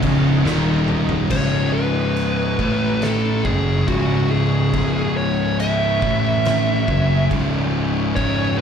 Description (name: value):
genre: stoner and doom metal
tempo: 70 BPM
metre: 4/4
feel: straight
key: C# minor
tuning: A4 = 440 Hz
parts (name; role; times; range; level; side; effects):
- overdriven tonewheel organ; sustained chords; 0.0-8.6 s; A3 to E5; -34 LUFS; right 2 dB; slow rotary speaker, chorus vibrato
- thick fuzz guitar; riff; 0.0-8.6 s; C#2 to A3; -22 LUFS; left 7 dB; distortion
- thick fuzz guitar; riff; 0.0-8.6 s; C#2 to A3; -24 LUFS; right 8 dB; distortion
- thick fuzz guitar; riff; 0.0-1.3 s; C#2 to D#3; -25 LUFS; equal; distortion
- fuzz picked electric bass; bass; 0.0-8.6 s; C#1 to A1; -22 LUFS; equal; overdrive
- oversized low-tuned drum kit; drums; 0.0-8.4 s; crash cymbal, kick drum, ride cymbal, snare drum, toms; -26 LUFS; right 1 dB; none
- fuzz lead guitar; melody; 1.3-8.6 s; F#4 to E5; -23 LUFS; equal; distortion, slapback echo, tape echo
room: little or no reverb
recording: live gig heard through the venue's PA, club reverb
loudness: -16 LUFS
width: side -7 dB against mid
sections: 0.0-1.3 A section; 1.3-8.6 B section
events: drum fill 0.5-1.3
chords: 0.0 C#5; 0.5 D#5; 1.3 C#5; 2.6 A5; 3.5 C#m; 6.0 A5; 6.9 C#m